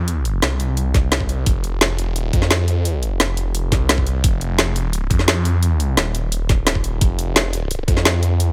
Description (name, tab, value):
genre	dark technical drum and bass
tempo	173 BPM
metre	4/4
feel	straight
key	unclear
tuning	A4 = 439 Hz
part	phased detuned saw bass	bass	0.0-8.5 s	Eb1 to F2	-22 LUFS	equal	phaser, tube saturation
part	drum and bass drum kit	drums	0.1-8.5 s	hi-hat, snare drum	-22 LUFS	equal	overdrive, small room ambience
part	electronic kick drum	drums	0.9-8.0 s	none	-20 LUFS	equal	small room ambience
room	digital ambience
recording	none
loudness	-19 LUFS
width	mono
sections	0.0-8.5 A section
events	none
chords	none